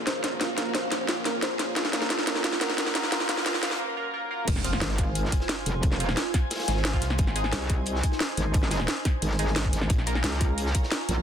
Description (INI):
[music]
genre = dark technical drum and bass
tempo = 177 BPM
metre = 4/4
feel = straight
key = F phrygian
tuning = A4 = 440 Hz
[part]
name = deep dark ambient pad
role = sustained chords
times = 0.0-3.8 s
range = Bb3 to Db5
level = -38 LUFS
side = right 1 dB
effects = chorus, built-in reverb, sidechain pumping
[part]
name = band-passed chord stab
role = stabs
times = 0.0-11.2 s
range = F3 to Bb4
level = -34 LUFS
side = right 2 dB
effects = chorus, phaser, dub echo
[part]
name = snarling distorted saw bass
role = bass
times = 0.0-7.5, 9.9-10.2 s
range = F1 to C2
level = -32 LUFS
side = equal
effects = none
[part]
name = riser and impact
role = sound effects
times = 0.0-5.8 s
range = none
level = -36 LUFS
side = equal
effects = none
[part]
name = airy breathy pad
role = texture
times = 0.0-11.2 s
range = Db4 to Bb5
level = -35 LUFS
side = equal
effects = chorus, phaser, sidechain pumping
[part]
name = soft round pluck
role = arpeggios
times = 0.1-3.7 s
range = F4 to C5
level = -34 LUFS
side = equal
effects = chorus, sidechain pumping, dub echo
[part]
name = drum and bass drum kit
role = drums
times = 0.1-11.2 s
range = crash cymbal, hi-hat, snare drum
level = -28 LUFS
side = equal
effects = none
[part]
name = crunchy breakbeat drum kit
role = drums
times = 4.5-11.2 s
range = hi-hat, snare drum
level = -39 LUFS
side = left 1 dB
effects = none
[part]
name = electronic kick drum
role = drums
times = 4.5-10.8 s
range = none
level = -25 LUFS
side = equal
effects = none
[part]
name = metallic wobble bass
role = bass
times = 4.8-11.2 s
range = F1 to Db2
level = -27 LUFS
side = equal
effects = chorus
[sound]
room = light reverb, digital ambience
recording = dense, heavily limited modern master, high-pass filter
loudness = -24 LUFS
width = side -8 dB against mid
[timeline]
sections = 0.0-4.5 A section; 4.5-11.2 B section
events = build-up 0.0-4.5; drum fill 0.0-3.8; filter sweep on ambient pad 0.0-4.5; filter sweep on synth stab 0.0-4.5; break 3.8-4.5; drop 4.5-11.2; impact 4.5-5.8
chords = 0.0 Bbm; 1.8 Gb; 4.5 Fm; 7.2 Ab; 9.9 Bbm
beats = 0.07 | 0.41 0.75 1.09 1.43 | 1.76 2.10 2.44 2.78 | 3.12 3.46 3.80 4.14 | 4.48 4.82 5.15 5.49 | 5.83 6.17 6.51 6.85 | 7.19 7.53 7.87 8.21 | 8.54 8.88 9.22 9.56 | 9.90 10.24 10.58 10.92